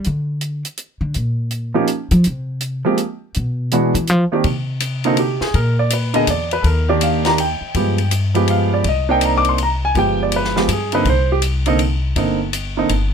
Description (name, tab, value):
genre	jazz piano trio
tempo	163 BPM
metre	3/4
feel	swing 64% on 8ths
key	C minor from 4.4 s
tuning	A4 = 440 Hz
part	upright bass	bass	0.0-13.1 s	G1 to F3	-19 LUFS	left 1 dB	none
part	compact cocktail drum kit	drums	0.0-13.0 s	hi-hat, kick drum, ride cymbal, snare drum	-25 LUFS	left 4 dB	none
part	warm concert grand piano	melody	1.7-12.9 s	D3 to D6	-17 LUFS	right 2 dB	none
room	little or no reverb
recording	close, detailed microphones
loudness	-15 LUFS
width	side -7 dB against mid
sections	0.0-4.4 A section; 4.4-13.1 B section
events	upright bass solo 0.0-4.4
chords	0.1 N.C.; 3.3 E9; 4.1 G5; 4.4 N.C.; 5.5 Bb(b9); 6.6 Ebmaj7; 7.7 G7b9; 8.8 Cm9; 10.0 G7b9; 11.1 Cm9